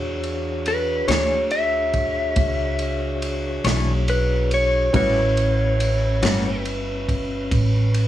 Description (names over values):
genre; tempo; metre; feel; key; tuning
slow blues; 47 BPM (dotted quarters); 12/8; straight; E mixolydian; A4 = 436 Hz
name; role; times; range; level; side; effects
mellow tonewheel organ; sustained chords; 0.0-8.1 s; C#4 to C#5; -28 LUFS; left 1 dB; slow rotary speaker
upright bass; bass; 0.0-8.1 s; G1 to E2; -23 LUFS; equal; none
crunchy breakbeat drum kit; drums; 0.2-8.1 s; kick drum, ride cymbal, snare drum; -27 LUFS; right 1 dB; none
electric slide guitar; melody; 0.7-6.6 s; B4 to E5; -22 LUFS; equal; none
semi-hollow electric guitar; accompaniment; 1.1-6.5 s; A2 to C#5; -23 LUFS; left 7 dB; harmonic tremolo
warm baby grand piano; accompaniment; 4.9-8.1 s; C#4 to B4; -30 LUFS; right 5 dB; none
room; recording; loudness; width
little or no reverb; studio ambience; -19 LUFS; side -12 dB against mid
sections
0.0-8.1 A section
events
electric slide guitar solo 0.0-8.1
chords
0.0 E13; 4.9 A13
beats
1.09 2.37 3.66 | 4.94 6.23 7.51